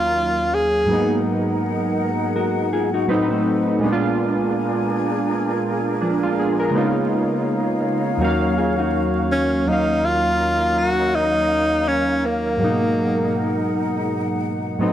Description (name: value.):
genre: hip hop.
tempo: 82 BPM.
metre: 4/4.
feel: swing 57% on 16ths.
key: Eb minor.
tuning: A4 = 439 Hz.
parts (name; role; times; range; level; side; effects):
breathy tenor saxophone; melody; 0.0-1.3, 9.3-13.7 s; Bb3 to Ab4; -19 LUFS; equal; analog delay.
warbly lo-fi synth keys; accompaniment; 0.0-14.9 s; Eb2 to F5; -20 LUFS; right 1 dB; chorus, cassette tape.
breathy large flute ensemble; sustained chords; 0.0-14.9 s; C4 to Ab5; -26 LUFS; equal; none.
mellow electric guitar; second line; 2.4-3.8, 8.2-9.6 s; A3 to Bb4; -24 LUFS; left 4 dB; analog delay.
room: moderate studio reverb, RT60 0.5 s.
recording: vinyl crackle.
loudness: -18 LUFS.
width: side -11 dB against mid.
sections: 0.0-9.7 A section; 9.7-14.9 B section.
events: none.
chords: 0.0 Ebm9; 0.9 Abm9; 3.1 Adim7; 3.8 Bb7b9; 6.7 Db13; 8.2 Ebm9; 12.6 Abm9.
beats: 0.16 | 0.90 1.63 2.36 3.09 | 3.82 4.55 5.29 6.02 | 6.75 7.48 8.21 8.95 | 9.68 10.41 11.14 11.87 | 12.60 13.34 14.07 14.80.